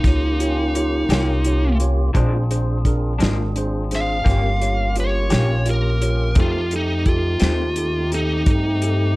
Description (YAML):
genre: slow blues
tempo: 57 BPM (dotted quarters)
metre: 12/8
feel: straight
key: unclear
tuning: A4 = 440 Hz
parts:
  - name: biting lead guitar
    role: melody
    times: 0.0-9.2 s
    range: Eb4 to F5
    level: -22 LUFS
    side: equal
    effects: overdrive
  - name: tonewheel organ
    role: sustained chords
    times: 0.0-9.2 s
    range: A3 to Ab4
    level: -29 LUFS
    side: equal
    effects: slow rotary speaker
  - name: upright bass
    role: bass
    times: 0.0-9.2 s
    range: G1 to G2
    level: -20 LUFS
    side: equal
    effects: none
  - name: warm soul drum kit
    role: drums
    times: 0.0-9.0 s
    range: hi-hat, kick drum, snare drum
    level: -20 LUFS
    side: equal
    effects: none
  - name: mellow tine electric piano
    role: accompaniment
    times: 0.1-9.1 s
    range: D4 to Db5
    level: -28 LUFS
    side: right 3 dB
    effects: none
  - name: electric guitar through a small old amp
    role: accompaniment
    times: 1.1-7.6 s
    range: F2 to G4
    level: -28 LUFS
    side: left 4 dB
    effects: harmonic tremolo
room: light reverb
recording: dark, warm production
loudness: -17 LUFS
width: side -20 dB against mid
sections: 0.0-9.2 A section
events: lead electric guitar solo 0.0-9.2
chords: 0.0 Eb7; 2.2 Bb7; 4.3 Eb7; 6.4 F7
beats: 0.05 1.10 | 2.16 3.21 4.26 5.32 | 6.37 7.42 8.47